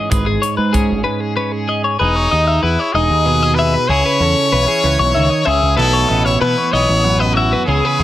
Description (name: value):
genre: math rock and midwest emo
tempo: 64 BPM (dotted quarters)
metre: 6/8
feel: straight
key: E major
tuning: A4 = 442 Hz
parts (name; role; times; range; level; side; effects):
- twelve-string electric guitar; accompaniment; 0.0-8.0 s; F#2 to G#4; -20 LUFS; right 5 dB; lush chorus
- twelve-string electric guitar; arpeggios; 0.0-8.0 s; G#4 to E5; -19 LUFS; left 5 dB; none
- growling picked electric bass; bass; 0.1-8.0 s; E1 to B2; -18 LUFS; equal; overdrive
- crisp fusion drum kit; drums; 0.1-0.9 s; hi-hat, kick drum; -19 LUFS; equal; none
- brilliant trumpet; melody; 2.0-8.0 s; D#4 to C#5; -16 LUFS; left 2 dB; none
room: light reverb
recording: none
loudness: -12 LUFS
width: side -13 dB against mid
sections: 0.0-2.0 A section; 2.0-8.0 B section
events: break 1.1-2.0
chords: 0.0 E6/G#; 2.0 Emaj7; 3.9 C#m7; 5.8 B7sus4